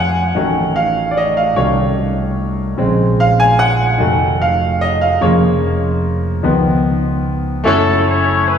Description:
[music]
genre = slow gospel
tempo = 49 BPM (dotted quarters)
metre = 6/8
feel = straight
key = Bb minor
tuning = A4 = 440 Hz
[part]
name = bright grand piano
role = accompaniment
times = 0.0-8.6 s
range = Db3 to Ab5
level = -14 LUFS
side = equal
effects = none
[part]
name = fingered electric bass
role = bass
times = 0.0-8.6 s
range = F1 to F2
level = -18 LUFS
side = right 1 dB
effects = none
[part]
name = warm horn section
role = melody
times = 7.7-8.6 s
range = C#4 to C#5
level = -15 LUFS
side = left 3 dB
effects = none
[sound]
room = wet church reverb, RT60 2.6 s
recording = recorded in a church or concert hall, small room ambience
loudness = -12 LUFS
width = side -8 dB against mid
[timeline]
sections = 0.0-7.7 A section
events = grand piano solo 0.0-7.7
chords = 0.4 F7b9b13/A; 2.8 Bbm9; 4.0 F7b9; 5.2 Bbm/F; 6.4 Db7; 7.7 F#m7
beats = | 0.35 1.57 | 2.79 4.01 | 5.22 6.44 | 7.66

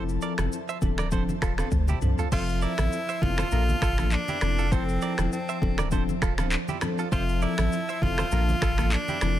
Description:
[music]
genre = afrobeats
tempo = 100 BPM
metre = 4/4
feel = swing 55% on 16ths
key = F major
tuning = A4 = 440 Hz
[part]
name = bell-like tine electric piano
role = accompaniment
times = 0.0-9.4 s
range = F3 to E5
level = -32 LUFS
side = left 4 dB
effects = analog chorus
[part]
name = ethereal airy pad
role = sustained chords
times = 0.0-9.4 s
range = F3 to A5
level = -35 LUFS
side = right 3 dB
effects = ensemble chorus, built-in reverb
[part]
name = direct-recorded clean electric guitar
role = riff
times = 0.0-9.2 s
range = E4 to E5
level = -35 LUFS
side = right 9 dB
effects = ping-pong delay
[part]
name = warm sub bass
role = bass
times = 0.0-9.4 s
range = D1 to D2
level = -27 LUFS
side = equal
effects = none
[part]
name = afro-pop drum kit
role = drums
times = 0.1-9.4 s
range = crash cymbal, finger snaps, handclaps, kick drum, rim click, shaker, toms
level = -29 LUFS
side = equal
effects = none
[part]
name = congas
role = percussion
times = 0.4-9.4 s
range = none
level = -35 LUFS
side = right 2 dB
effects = none
[part]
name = edgy tenor saxophone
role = melody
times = 2.3-9.4 s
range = C4 to F4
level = -31 LUFS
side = left 1 dB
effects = ping-pong delay
[sound]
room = little or no reverb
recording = none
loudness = -23 LUFS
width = side -12 dB against mid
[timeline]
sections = 0.0-2.3 A section; 2.3-9.4 B section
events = drum fill 1.7-2.3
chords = 0.0 Fmaj7; 0.8 Dm7; 2.3 Fmaj7; 3.5 Bbmaj7; 4.4 Fmaj7; 5.6 Dm7; 7.1 Fmaj7; 8.3 Bbmaj7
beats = 0.52 1.12 1.72 | 2.32 2.92 3.52 4.12 | 4.72 5.32 5.92 6.52 | 7.12 7.72 8.32 8.92

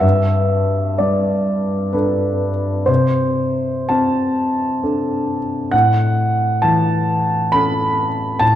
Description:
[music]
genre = classical, impressionist solo piano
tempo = 57-68 BPM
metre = 3/4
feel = rubato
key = unclear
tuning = A4 = 439 Hz
[part]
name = warm grand piano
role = solo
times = 0.0-8.6 s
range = G2 to B5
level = -15 LUFS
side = equal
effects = none
[sound]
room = moderate recital hall reverb, RT60 1.7 s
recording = dark, warm production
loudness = -15 LUFS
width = side -11 dB against mid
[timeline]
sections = 0.0-8.6 A section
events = none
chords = 0.0 Gadd9; 2.9 Csus2; 5.7 A69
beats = | 0.03 1.02 1.96 | 2.89 3.90 4.83 | 5.73 6.64 7.53 | 8.42

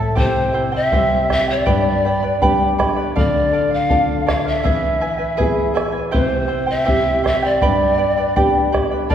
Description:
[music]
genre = andean folk, Andean ensemble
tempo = 81 BPM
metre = 2/4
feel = straight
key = unclear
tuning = A4 = 440 Hz
[part]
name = charango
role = accompaniment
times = 0.0-9.1 s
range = E4 to B5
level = -21 LUFS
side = right 2 dB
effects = none
[part]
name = nylon-string guitar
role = accompaniment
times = 0.0-9.1 s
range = G2 to G#4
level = -22 LUFS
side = left 3 dB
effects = none
[part]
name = breathy mellow pan flute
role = melody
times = 0.2-9.1 s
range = C5 to F5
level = -19 LUFS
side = equal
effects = none
[part]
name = bombo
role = percussion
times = 0.2-9.1 s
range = none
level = -21 LUFS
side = equal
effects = none
[sound]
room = wet concert hall reverb, RT60 1.8 s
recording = heard from further back in the room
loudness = -15 LUFS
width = side -9 dB against mid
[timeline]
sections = 0.2-9.1 A section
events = none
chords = 0.2 C; 1.7 G; 3.2 Dm; 4.7 E; 6.1 C; 7.6 G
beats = | 0.19 0.93 | 1.68 2.42 | 3.17 3.91 | 4.65 5.39 | 6.14 6.88 | 7.62 8.37 | 9.11

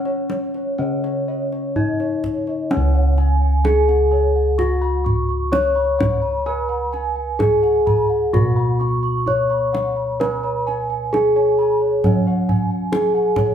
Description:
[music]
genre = Javanese gamelan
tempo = 60-69 BPM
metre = 4/4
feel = straight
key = Db slendro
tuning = A4 = 440 Hz
[part]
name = gamelan-type bronze metallophone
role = melody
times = 0.0-13.5 s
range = Db4 to Db5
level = -19 LUFS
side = left 1 dB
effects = none
[part]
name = gamelan-type bossed gongs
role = arpeggios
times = 0.0-13.5 s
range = Db5 to Db6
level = -30 LUFS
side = left 1 dB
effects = none
[part]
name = gamelan-type bronze metallophone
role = arpeggios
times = 0.0-13.5 s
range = Db5 to Db6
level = -27 LUFS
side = right 4 dB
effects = none
[part]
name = gamelan-type bossed gongs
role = bass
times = 0.0-13.5 s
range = Db2 to Db5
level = -22 LUFS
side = equal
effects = none
[part]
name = kendang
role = percussion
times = 0.1-13.5 s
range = none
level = -23 LUFS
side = right 1 dB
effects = none
[sound]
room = moderate large studio reverb, RT60 1.1 s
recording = band playing live in one room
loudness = -16 LUFS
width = side -9 dB against mid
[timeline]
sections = 0.0-2.7 A section; 2.7-13.5 B section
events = none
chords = none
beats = 0.79 1.76 | 2.71 3.65 4.59 5.52 | 6.46 7.40 8.34 9.27 | 10.21 11.14 12.04 12.93

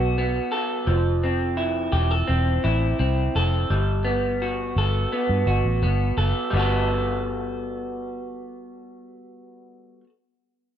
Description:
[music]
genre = indie pop, bedroom pop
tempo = 85 BPM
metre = 4/4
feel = straight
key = G major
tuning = A4 = 438 Hz
[part]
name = electric guitar through a small old amp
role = accompaniment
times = 0.0-10.1 s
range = F3 to A4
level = -24 LUFS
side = equal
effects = wide subtle chorus, vibrato effect, plate reverb
[part]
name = vintage muted fingered electric bass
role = bass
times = 0.0-9.8 s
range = E1 to G2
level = -23 LUFS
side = equal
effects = none
[sound]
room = moderate studio reverb, RT60 0.5 s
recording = none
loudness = -21 LUFS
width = side -10 dB against mid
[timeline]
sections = 0.0-6.5 A section; 6.5-9.4 B section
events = none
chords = 0.0 Gmaj9; 0.9 Fmaj7; 3.7 Gmaj9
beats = 0.17 | 0.88 1.58 2.29 3.00 | 3.71 4.41 5.12 5.83 | 6.54 7.24 7.95 8.66

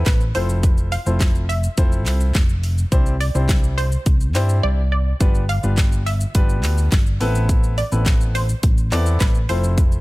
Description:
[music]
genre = dance-pop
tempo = 105 BPM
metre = 4/4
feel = straight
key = C major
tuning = A4 = 441 Hz
[part]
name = warm grand piano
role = accompaniment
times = 0.0-10.0 s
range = B3 to D5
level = -27 LUFS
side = left 2 dB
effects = sidechain pumping
[part]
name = wide unison pluck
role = melody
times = 0.1-9.6 s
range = B4 to F5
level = -29 LUFS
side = right 1 dB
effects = tape echo
[part]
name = hollow-body short-scale fingered electric bass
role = bass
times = 0.1-10.0 s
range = F1 to G2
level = -19 LUFS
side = equal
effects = sidechain pumping
[part]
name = pop drum kit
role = drums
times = 0.1-10.0 s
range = handclaps, hi-hat, kick drum, shaker, snare drum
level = -18 LUFS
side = equal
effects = none
[sound]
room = digital ambience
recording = none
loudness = -16 LUFS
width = side -20 dB against mid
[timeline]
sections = 0.0-10.0 A section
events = silent gap 4.6-5.2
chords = 0.3 Fmaj7; 2.9 Cadd9; 5.2 G7; 7.2 Amadd9; 9.5 Fmaj7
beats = 0.06 | 0.63 1.21 1.78 2.35 | 2.92 3.49 4.06 4.63 | 5.21 5.78 6.35 6.92 | 7.49 8.06 8.63 9.21 | 9.78

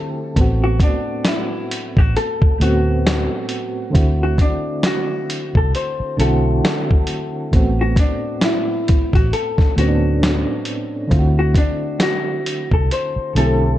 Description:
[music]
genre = lo-fi hip hop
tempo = 67 BPM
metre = 4/4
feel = swing 58% on 16ths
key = A dorian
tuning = A4 = 445 Hz
[part]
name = hollow-body jazz guitar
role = melody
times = 0.0-13.8 s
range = D4 to C5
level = -23 LUFS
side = left 2 dB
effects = low-pass filter, analog delay
[part]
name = soft electric-piano-like synth keys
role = accompaniment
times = 0.0-13.8 s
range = A2 to A4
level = -23 LUFS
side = right 1 dB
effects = chorus, tremolo, cassette tape, low-pass filter
[part]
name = vintage muted fingered electric bass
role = bass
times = 0.4-13.8 s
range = A1 to D2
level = -18 LUFS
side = equal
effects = none
[part]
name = lo-fi sampler-style drum kit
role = drums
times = 0.4-13.6 s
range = hi-hat, kick drum, snare drum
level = -18 LUFS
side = equal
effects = vintage 12-bit sampler grit
[sound]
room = light reverb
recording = dark, warm production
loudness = -15 LUFS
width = side -13 dB against mid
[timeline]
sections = 0.0-13.8 A section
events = none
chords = 0.4 Am69; 3.9 D7; 7.5 Am69; 11.1 D7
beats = | 0.36 1.26 2.15 3.05 | 3.95 4.84 5.74 6.63 | 7.53 8.42 9.32 10.21 | 11.11 12.01 12.90

